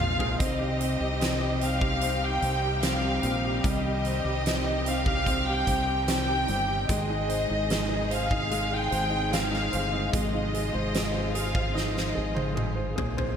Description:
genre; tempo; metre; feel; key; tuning
pop ballad; 74 BPM; 4/4; straight; C minor; A4 = 440 Hz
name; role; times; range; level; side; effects
dark studio violin section; melody; 0.0-12.6 s; Eb5 to G5; -29 LUFS; equal; none
clear baby grand piano; accompaniment; 0.0-13.4 s; G3 to C5; -32 LUFS; equal; none
bright studio string section; sustained chords; 0.0-13.3 s; C3 to Ab4; -34 LUFS; left 1 dB; none
fingered electric bass; bass; 0.0-13.4 s; G1 to C2; -31 LUFS; equal; none
huge arena drum kit; drums; 0.0-13.4 s; hi-hat, kick drum, snare drum, toms; -31 LUFS; equal; none
room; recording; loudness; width
wet lush hall reverb, RT60 2.9 s; dreamy mix soaked in reverb; -24 LUFS; side -8 dB against mid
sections
0.0-13.4 A section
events
drum fill 0.0-0.4, 11.8-13.4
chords
0.4 Cm; 6.9 Ab; 10.1 Fm7/Ab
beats
| 0.40 1.21 2.02 2.83 | 3.65 4.46 5.27 6.08 | 6.89 7.70 8.51 9.32 | 10.13 10.94 11.75 12.56

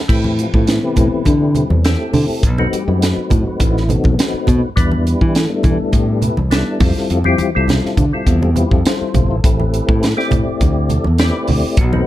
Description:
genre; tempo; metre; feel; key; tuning
electric jazz fusion; 103 BPM; 4/4; straight; A minor; A4 = 440 Hz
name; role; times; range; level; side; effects
percussive tonewheel organ; accompaniment; 0.1-12.1 s; C3 to D5; -19 LUFS; left 3 dB; chorus vibrato, slow rotary speaker
modern bright fingered electric bass; bass; 0.1-12.0 s; G1 to E3; -16 LUFS; equal; none
crisp fusion drum kit; drums; 0.1-11.9 s; crash cymbal, hi-hat, kick drum, snare drum; -17 LUFS; equal; none
congas; percussion; 0.2-12.1 s; none; -22 LUFS; right 2 dB; none
room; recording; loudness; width
little or no reverb; dark, warm production; -13 LUFS; side -14 dB against mid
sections
0.1-12.1 A section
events
none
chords
0.1 Am9; 2.4 B7b9; 4.8 Em7; 6.8 Fmaj7; 9.4 Am9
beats
| 0.09 0.68 1.26 1.85 | 2.43 3.02 3.60 4.18 | 4.77 5.35 5.93 6.52 | 7.10 7.69 8.27 8.86 | 9.44 10.02 10.61 11.19 | 11.77

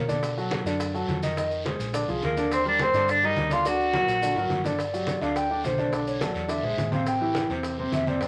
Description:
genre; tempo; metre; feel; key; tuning
Afro-Cuban jazz; 211 BPM; 4/4; straight; unclear; A4 = 439 Hz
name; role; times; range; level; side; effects
clear tenor saxophone; melody; 0.0-0.1, 2.2-4.6 s; Bb3 to F#4; -27 LUFS; equal; none
breathy mellow concert flute; second line; 0.0-0.1, 2.2-8.3 s; Bb4 to G5; -31 LUFS; equal; none
warm concert grand piano; accompaniment; 0.0-8.3 s; B#2 to Eb5; -31 LUFS; equal; none
woody fretless electric bass; bass; 0.0-8.3 s; G1 to B2; -37 LUFS; equal; none
bongos; percussion; 0.1-8.3 s; none; -40 LUFS; equal; none
congas; percussion; 0.1-8.3 s; none; -35 LUFS; equal; none
guiro; percussion; 0.1-8.3 s; none; -42 LUFS; equal; none
maracas; percussion; 0.1-8.3 s; none; -46 LUFS; equal; none
room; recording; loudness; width
wet studio ambience, RT60 0.5 s; none; -26 LUFS; mono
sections
0.0-4.8 A section; 4.8-8.3 B section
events
drum fill 3.6-4.8; flute solo 4.8-8.3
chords
0.2 Bm7; 1.4 Fm7; 1.9 Bb9; 2.5 Ebmaj7; 3.6 Daug; 4.8 Gmaj7; 5.9 Bm7; 6.5 Eaug7; 7.1 Am7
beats
| 0.23 0.52 0.80 1.09 | 1.37 1.66 1.94 2.23 | 2.51 2.80 3.08 3.37 | 3.65 3.94 4.22 4.50 | 4.79 5.08 5.36 5.65 | 5.93 6.22 6.50 6.79 | 7.07 7.36 7.64 7.93 | 8.21

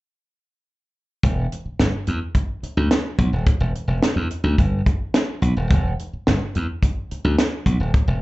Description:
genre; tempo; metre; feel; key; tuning
funk; 108 BPM; 4/4; straight; unclear; A4 = 439 Hz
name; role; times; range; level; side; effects
glassy slap bass; bass; 1.2-8.2 s; D#1 to E2; -20 LUFS; equal; none
tight funk drum kit; drums; 1.2-8.1 s; hi-hat, kick drum, snare drum; -20 LUFS; equal; none
room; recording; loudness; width
light reverb; live gig heard through the venue's PA, club reverb, nothing above 7.9 kHz; -19 LUFS; side -19 dB against mid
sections
1.2-8.2 A section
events
none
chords
none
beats
| 1.24 1.80 2.35 2.91 | 3.47 4.03 4.58 5.14 | 5.70 6.26 6.82 7.38 | 7.93

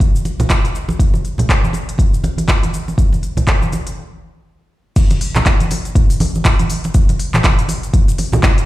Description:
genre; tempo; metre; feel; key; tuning
house; 121 BPM; 4/4; swing 59% on 16ths; none; none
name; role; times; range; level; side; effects
afro-pop drum kit; drums; 0.0-8.7 s; crash cymbal, handclaps, hi-hat, shaker, toms; -20 LUFS; equal; none
electronic kick drum; drums; 0.0-8.6 s; none; -14 LUFS; equal; overdrive
congas; percussion; 0.0-8.6 s; none; -20 LUFS; right 1 dB; none
room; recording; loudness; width
light reverb, digital ambience; played on a big sound system in a bare room, large studio reverb; -13 LUFS; side -16 dB against mid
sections
0.0-5.0 A section; 5.0-8.7 B section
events
stop 4.0-5.0; drop 5.0-8.7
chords
none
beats
0.01 0.50 | 1.00 1.49 1.99 2.48 | 2.98 3.48 3.97 4.47 | 4.96 5.46 5.96 6.45 | 6.95 7.44 7.94 8.44

